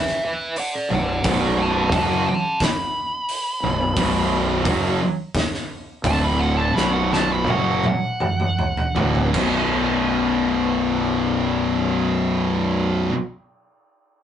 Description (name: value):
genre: stoner and doom metal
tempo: 77-88 BPM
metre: 4/4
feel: straight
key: B minor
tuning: A4 = 439 Hz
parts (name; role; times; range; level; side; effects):
- fuzz lead guitar; melody; 0.0-9.3 s; B4 to B5; -24 LUFS; right 1 dB; wah, distortion
- oversized low-tuned drum kit; drums; 0.1-9.5 s; crash cymbal, hi-hat, kick drum, snare drum, toms; -25 LUFS; equal; none
- thick fuzz guitar; riff; 0.9-13.1 s; B1 to F#3; -25 LUFS; left 5 dB; distortion
- thick fuzz guitar; riff; 0.9-13.1 s; B1 to F#3; -22 LUFS; right 2 dB; distortion
- fuzz fingered electric bass; bass; 0.9-13.1 s; B0 to F#1; -25 LUFS; equal; overdrive
room: light reverb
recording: rough rehearsal-room recording, nothing above 10.6 kHz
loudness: -18 LUFS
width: side -9 dB against mid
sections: 0.0-9.7 A section; 9.7-12.8 B section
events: lead electric guitar solo 0.0-9.7; slowing down 4.0-9.7; drum fill 6.8-9.7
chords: 0.0 B5; 6.0 D5; 6.8 B5; 8.9 D5; 9.3 B5